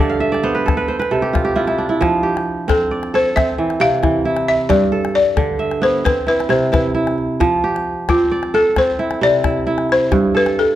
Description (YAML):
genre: west african traditional, West African string and xylophone music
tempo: 89 BPM (dotted quarters)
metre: 12/8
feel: straight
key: unclear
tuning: A4 = 437 Hz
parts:
  - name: kora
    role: arpeggios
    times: 0.0-10.8 s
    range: G2 to G5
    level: -17 LUFS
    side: right 2 dB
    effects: none
  - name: calabash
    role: percussion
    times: 0.1-10.6 s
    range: none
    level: -22 LUFS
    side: left 3 dB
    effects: none
  - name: balafon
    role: melody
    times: 2.7-10.8 s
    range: F4 to F5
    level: -16 LUFS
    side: left 2 dB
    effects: none
room: moderate recital hall reverb, RT60 1.4 s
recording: dark, warm production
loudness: -14 LUFS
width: side -13 dB against mid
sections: 0.0-10.8 A section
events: kora fill 0.0-2.0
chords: 0.0 G; 0.7 C; 2.0 F; 3.4 C; 4.7 G; 6.1 C; 7.4 F; 8.8 C; 10.1 G